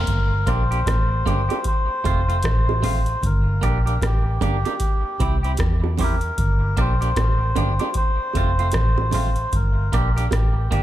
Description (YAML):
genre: roots reggae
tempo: 76 BPM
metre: 4/4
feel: swing 61% on 16ths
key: G dorian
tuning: A4 = 440 Hz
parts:
  - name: melodica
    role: melody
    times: 0.0-10.8 s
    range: G4 to C5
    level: -26 LUFS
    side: left 1 dB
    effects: tape echo
  - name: vintage muted fingered electric bass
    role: bass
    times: 0.0-10.8 s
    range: F1 to E2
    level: -21 LUFS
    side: equal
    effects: none
  - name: booming analog drum machine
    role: drums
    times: 0.1-10.8 s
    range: hi-hat, kick drum, rim click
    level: -23 LUFS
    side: equal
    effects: none
  - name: clean electric guitar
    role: accompaniment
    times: 0.5-10.8 s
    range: A3 to G4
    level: -29 LUFS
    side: right 3 dB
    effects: tape echo
  - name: bongos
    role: percussion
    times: 0.9-10.5 s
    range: none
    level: -31 LUFS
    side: right 7 dB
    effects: none
room: little or no reverb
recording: none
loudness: -18 LUFS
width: side -13 dB against mid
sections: 0.1-10.8 A section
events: none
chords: 0.1 Gm; 1.7 F; 3.2 Gm; 4.8 C; 6.4 Gm; 8.0 F; 9.5 Gm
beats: | 0.08 0.86 1.65 2.44 | 3.23 4.01 4.80 5.59 | 6.38 7.17 7.96 8.74 | 9.53 10.32